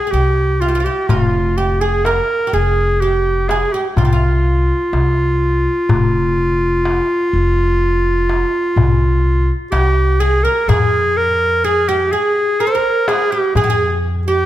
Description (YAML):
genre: Turkish makam ensemble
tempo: 125 BPM (eighths)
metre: 10/8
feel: straight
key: F makam huseyni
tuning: A4 = 440 Hz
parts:
  - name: clear clarinet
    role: melody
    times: 0.0-14.5 s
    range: F4 to Bb4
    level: -16 LUFS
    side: equal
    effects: none
  - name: oud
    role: second line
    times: 0.0-14.5 s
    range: F4 to C5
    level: -22 LUFS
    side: right 6 dB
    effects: none
  - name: upright bass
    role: bass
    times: 0.1-14.5 s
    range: F1 to F2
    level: -17 LUFS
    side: equal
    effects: none
  - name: darbuka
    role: percussion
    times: 1.1-13.8 s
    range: none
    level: -19 LUFS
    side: left 3 dB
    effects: none
room: light reverb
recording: none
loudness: -13 LUFS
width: side -13 dB against mid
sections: 0.0-10.7 A section; 10.7-14.5 B section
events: none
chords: none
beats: 0.13 0.61 | 1.09 1.57 2.05 2.53 3.01 3.49 3.97 4.45 4.93 5.41 | 5.89 6.37 6.85 7.33 7.81 8.29 8.77 9.25 9.73 10.21 | 10.68 11.16 11.64 12.12 12.60 13.08 13.55 14.03